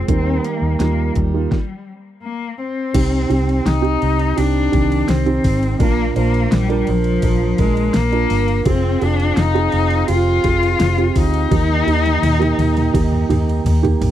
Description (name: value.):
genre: piano-driven pop.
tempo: 84 BPM.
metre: 4/4.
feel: straight.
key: C minor.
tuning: A4 = 443 Hz.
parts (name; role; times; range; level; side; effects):
warm cello; melody; 0.0-13.7 s; F3 to F4; -20 LUFS; left 5 dB; none.
felt-muted upright piano; accompaniment; 0.0-14.1 s; Bb2 to C5; -20 LUFS; right 8 dB; none.
mellow flute section; sustained chords; 0.0-1.5, 8.7-14.1 s; Eb4 to Bb5; -31 LUFS; right 3 dB; none.
vintage muted fingered electric bass; bass; 0.1-14.1 s; F1 to Eb2; -19 LUFS; left 1 dB; none.
pop drum kit; drums; 0.1-14.1 s; crash cymbal, hi-hat, kick drum, ride cymbal, snare drum, toms; -20 LUFS; equal; overdrive.
room: little or no reverb.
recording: dry, close 1970s-style studio recording.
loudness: -14 LUFS.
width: side -11 dB against mid.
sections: 0.0-3.0 A section; 3.0-14.1 B section.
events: stop 1.5-3.0; drum fill 11.5-14.1.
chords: 0.1 Eb; 3.0 Cm; 5.8 Bb; 8.7 Fm; 11.5 Eb.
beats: | 0.09 0.80 1.52 2.23 | 2.95 3.67 4.38 5.09 | 5.81 6.52 7.23 7.95 | 8.66 9.37 10.09 10.80 | 11.51 12.23 12.94 13.66.